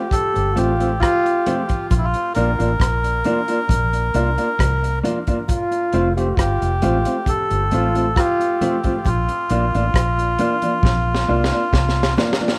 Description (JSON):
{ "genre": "roots reggae", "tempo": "67 BPM", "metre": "4/4", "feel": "straight", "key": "unclear", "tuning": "A4 = 440 Hz", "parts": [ { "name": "melodica", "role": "melody", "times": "0.0-12.1 s", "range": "E4 to Bb4", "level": "-25 LUFS", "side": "equal", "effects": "tape echo" }, { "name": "clear trombone", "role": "second line", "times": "0.0-8.8 s", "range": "F4 to G4", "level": "-25 LUFS", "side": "equal", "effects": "tape echo" }, { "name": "crunchy breakbeat drum kit", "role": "drums", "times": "0.1-12.6 s", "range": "hi-hat, kick drum, rim click, snare drum", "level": "-24 LUFS", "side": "equal", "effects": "none" }, { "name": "congas", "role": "percussion", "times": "0.1-12.6 s", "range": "none", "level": "-35 LUFS", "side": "equal", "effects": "none" }, { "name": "vintage muted fingered electric bass", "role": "bass", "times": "0.4-12.1 s", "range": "F1 to C2", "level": "-23 LUFS", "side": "equal", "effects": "none" }, { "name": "mellow electric guitar", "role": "accompaniment", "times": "0.6-12.5 s", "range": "A3 to F4", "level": "-26 LUFS", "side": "equal", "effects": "spring reverb, tape echo" } ], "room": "little or no reverb", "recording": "rough home demo mix", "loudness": "-19 LUFS", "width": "mono", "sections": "0.0-12.6 A section", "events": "drum fill 10.8-12.6", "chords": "0.0 F; 1.9 Bb; 5.5 F; 9.1 Bb" }